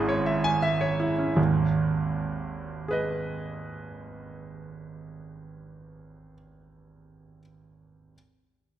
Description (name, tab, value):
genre	classical, virtuoso piano study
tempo	79 BPM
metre	3/4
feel	rubato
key	G# minor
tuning	A4 = 440 Hz
part	warm concert grand piano	solo	0.0-8.2 s	G#1 to G#5	-26 LUFS	right 2 dB	none
room	moderate recital hall reverb, RT60 1.7 s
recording	none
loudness	-24 LUFS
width	side -11 dB against mid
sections	0.0-1.4 A section; 1.4-5.9 B section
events	slowing down 0.0-1.4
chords	0.0 C#m/G#; 1.4 G#m